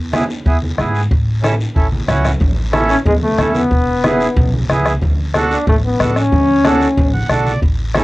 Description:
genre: latin, cumbia.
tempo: 184 BPM.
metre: 4/4.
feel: straight.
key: A major.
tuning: A4 = 439 Hz.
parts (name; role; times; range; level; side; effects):
upright bass; bass; 0.0-8.0 s; E1 to G#2; -19 LUFS; equal; none.
accordion; accompaniment; 0.1-8.0 s; B3 to F#5; -18 LUFS; right 2 dB; cassette tape.
bombo; percussion; 0.1-8.0 s; none; -17 LUFS; equal; none.
congas; percussion; 0.1-8.0 s; none; -22 LUFS; equal; none.
guiro; percussion; 0.1-8.0 s; none; -33 LUFS; left 3 dB; none.
clear trombone; second line; 2.9-7.1 s; G#3 to D4; -15 LUFS; left 1 dB; cassette tape.
room: moderate booth ambience, RT60 0.2 s.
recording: home recording on cassette.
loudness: -12 LUFS.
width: side -19 dB against mid.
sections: 0.0-2.4 A section; 2.4-8.0 B section.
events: drum fill 1.9-2.4; trombone solo 2.4-8.0; accordion fill 7.0-7.6.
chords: 0.0 E; 1.1 A; 3.7 E; 5.0 D.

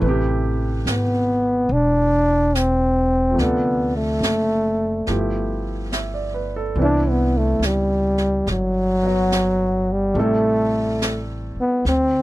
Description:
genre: jazz ballad.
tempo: 71 BPM.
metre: 4/4.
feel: swing 67% on 8ths.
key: unclear.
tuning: A4 = 440 Hz.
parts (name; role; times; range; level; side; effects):
clear baby grand piano; accompaniment; 0.0-11.9 s; C3 to E5; -26 LUFS; right 2 dB; none.
upright bass; bass; 0.0-12.2 s; E1 to D2; -24 LUFS; equal; none.
jazz brush drum kit; drums; 0.0-12.2 s; brushed snare drum, hi-hat, snare drum; -29 LUFS; right 1 dB; none.
mellow trombone; melody; 0.9-12.2 s; F#3 to D4; -19 LUFS; equal; none.
room: little or no reverb.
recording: dry, close 1970s-style studio recording.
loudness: -18 LUFS.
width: side -16 dB against mid.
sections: 0.0-12.2 A section.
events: none.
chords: 0.0 Am9; 3.4 Dm7; 5.1 G13; 6.8 Cmaj9; 10.1 Am7.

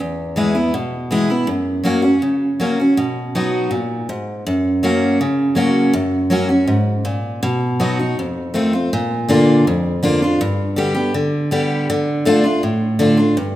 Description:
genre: country.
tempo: 162 BPM.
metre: 4/4.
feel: straight.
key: unclear.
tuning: A4 = 441 Hz.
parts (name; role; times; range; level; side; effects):
picked steel-string acoustic guitar; solo; 0.0-13.6 s; E2 to G4; -15 LUFS; equal; none.
room: wet recital hall reverb, RT60 1.7 s.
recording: minimal, uncompressed stereo recording.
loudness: -15 LUFS.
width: side -14 dB against mid.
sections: 0.0-8.9 A section; 8.9-13.6 B section.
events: none.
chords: 0.0 E; 1.5 F#; 3.0 B; 4.5 F#; 7.4 B; 8.2 F7; 8.9 Bb; 10.4 G; 11.9 Dm.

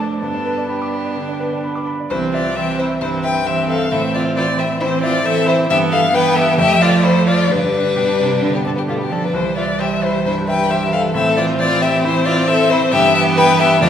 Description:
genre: quick classical-period movement for piano quintet.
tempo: 133 BPM.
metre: 4/4.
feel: straight.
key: C major.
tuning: A4 = 440 Hz.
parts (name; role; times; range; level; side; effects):
warm violin; melody; 0.0-13.9 s; F4 to G5; -18 LUFS; left 4 dB; none.
rich cello; second line; 0.0-13.9 s; B2 to B3; -22 LUFS; right 4 dB; none.
rich violin; second line; 0.0-13.9 s; A3 to B4; -22 LUFS; left 2 dB; none.
bright grand piano; accompaniment; 0.0-13.9 s; C2 to D6; -22 LUFS; equal; none.
clear viola; accompaniment; 0.0-13.9 s; G3 to D4; -22 LUFS; right 2 dB; none.
room: wet recital hall reverb, RT60 1.3 s.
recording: recorded in a church or concert hall.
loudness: -14 LUFS.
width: side -9 dB against mid.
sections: 0.0-2.1 A section; 2.1-13.9 B section.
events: none.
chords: 0.2 G; 2.1 C; 3.9 Am; 5.7 Em/G; 6.6 Dm/F; 7.5 G; 9.3 C; 11.1 Am; 12.9 Em/G.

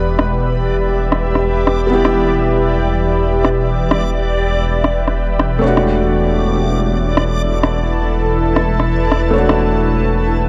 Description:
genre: future garage.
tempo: 129 BPM.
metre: 4/4.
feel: swing 63% on 16ths.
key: E dorian.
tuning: A4 = 441 Hz.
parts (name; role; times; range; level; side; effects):
felt-muted upright piano; accompaniment; 0.0-10.5 s; G3 to C#5; -22 LUFS; equal; vintage 12-bit sampler grit, tape echo.
granular cloud pad; sustained chords; 0.0-10.5 s; E4 to A5; -22 LUFS; equal; built-in reverb.
swelling detuned saw bass; bass; 0.0-10.5 s; E1; -20 LUFS; equal; none.
backwards swelling texture; texture; 0.0-10.5 s; D5; -28 LUFS; equal; built-in reverb.
electronic rim click; drums; 0.2-9.6 s; none; -20 LUFS; equal; overdrive, low-pass filter on perc, low-pass filter on snare.
room: digital ambience.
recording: dry, gritty hardware recording.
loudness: -16 LUFS.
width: mono.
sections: 0.0-10.5 A section.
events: none.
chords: 0.0 Em; 5.6 Bm7/E.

